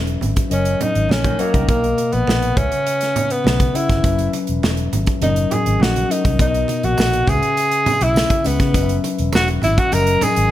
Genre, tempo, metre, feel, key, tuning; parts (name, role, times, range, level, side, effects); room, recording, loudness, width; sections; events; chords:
lush 1970s-style soul; 102 BPM; 4/4; straight; B major; A4 = 440 Hz
mellow tine electric piano; accompaniment; 0.0-10.5 s; B2 to F#5; -23 LUFS; left 5 dB
vintage muted fingered electric bass; bass; 0.0-10.5 s; E1 to C#3; -20 LUFS; equal
modern studio drum kit; drums; 0.1-10.5 s; hi-hat, kick drum, snare drum; -21 LUFS; equal
congas; percussion; 0.2-10.4 s; -27 LUFS; right 5 dB
breathy tenor saxophone; melody; 0.5-10.5 s; A#3 to A#4; -19 LUFS; equal
electric guitar through a small old amp; riff; 1.2-1.8 s; A#3 to A#4; -27 LUFS; right 2 dB
tambourine; percussion; 6.7-10.4 s; -36 LUFS; right 4 dB
light reverb; -15 LUFS; side -13 dB against mid
0.0-10.5 A section
tenor saxophone solo 0.0-10.5
0.0 F#7sus4; 0.5 D#m7/F#; 1.7 Bmaj7; 2.6 C#m7; 4.0 F#7sus4; 5.2 D#m7/F#; 6.4 Bmaj7; 7.3 C#m7; 8.7 F#7sus4; 9.9 D#m7/F#